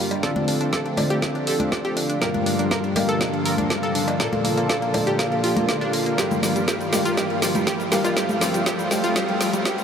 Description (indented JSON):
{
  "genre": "progressive house",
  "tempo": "121 BPM",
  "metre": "4/4",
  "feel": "straight",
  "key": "G minor",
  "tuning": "A4 = 438 Hz",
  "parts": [
    { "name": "lush unison pad", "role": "sustained chords", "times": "0.0-9.8 s", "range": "D3 to A4", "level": "-27 LUFS", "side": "right 1 dB", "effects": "chorus, sidechain pumping" },
    { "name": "analog pluck", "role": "arpeggios", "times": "0.0-9.8 s", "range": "G3 to Bb4", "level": "-26 LUFS", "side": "equal", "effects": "chorus, sidechain pumping, diffuse ambient delay" },
    { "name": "dark grand piano", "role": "stabs", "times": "0.0-9.8 s", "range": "G2 to F5", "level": "-25 LUFS", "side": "left 2 dB", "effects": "sidechain pumping, diffuse ambient delay" },
    { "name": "plucky analog bass", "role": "bass", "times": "0.0-9.6 s", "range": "none", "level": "barely audible", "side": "none", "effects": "none" },
    { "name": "riser", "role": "sound effects", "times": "0.5-9.8 s", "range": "none", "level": "-35 LUFS", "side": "right 2 dB", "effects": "none" },
    { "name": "deep house drum kit", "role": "drums", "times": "0.1-9.8 s", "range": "hi-hat, shaker, snare drum", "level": "-26 LUFS", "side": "right 1 dB", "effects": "sidechain pumping on perc, sidechain pumping on hats" },
    { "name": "cowbell and congas", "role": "percussion", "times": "0.1-9.6 s", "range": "none", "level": "-31 LUFS", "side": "left 1 dB", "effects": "none" },
    { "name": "electronic kick drum", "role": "drums", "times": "0.2-9.8 s", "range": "none", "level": "-32 LUFS", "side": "right 1 dB", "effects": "none" }
  ],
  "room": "wet huge ambient reverb, RT60 8.7 s",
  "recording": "dreamy mix soaked in reverb, high-pass filter",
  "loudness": "-19 LUFS",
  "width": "side -7 dB against mid",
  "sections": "0.0-9.8 A section",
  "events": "build-up 0.0-9.8; drum fill 0.0-9.8",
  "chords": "0.2 Dm7; 2.2 Gm7; 4.2 Bbmaj7; 6.2 Gm7; 8.2 Dm7",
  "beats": "| 0.23 0.73 1.22 1.72 | 2.22 2.71 3.21 3.70 | 4.20 4.70 5.19 5.69 | 6.18 6.68 7.17 7.67 | 8.17 8.66 9.16 9.65"
}